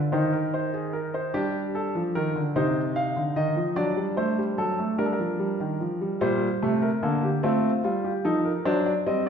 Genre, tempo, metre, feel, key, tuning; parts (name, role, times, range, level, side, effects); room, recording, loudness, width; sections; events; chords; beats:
classical, baroque-style 3-part fugue for grand piano; 49 BPM (dotted quarters); 6/8; straight; C minor, G minor from 6.2 s; A4 = 440 Hz
warm concert grand piano; solo; 0.0-9.3 s; Bb2 to F5; -23 LUFS; equal
wet recital hall reverb, RT60 1.5 s; heard from further back in the room; -23 LUFS; side -7 dB against mid
0.0-6.2 A section; 6.2-9.3 B section
0.1 Cm/Eb; 1.3 Gm; 2.6 Cmadd11; 3.8 D7/F#; 5.0 Gm; 6.2 Gm/Bb; 7.4 Am7b5; 8.7 D7/F#
0.13 | 1.34 2.56 | 3.77 4.99 | 6.22 7.44 | 8.67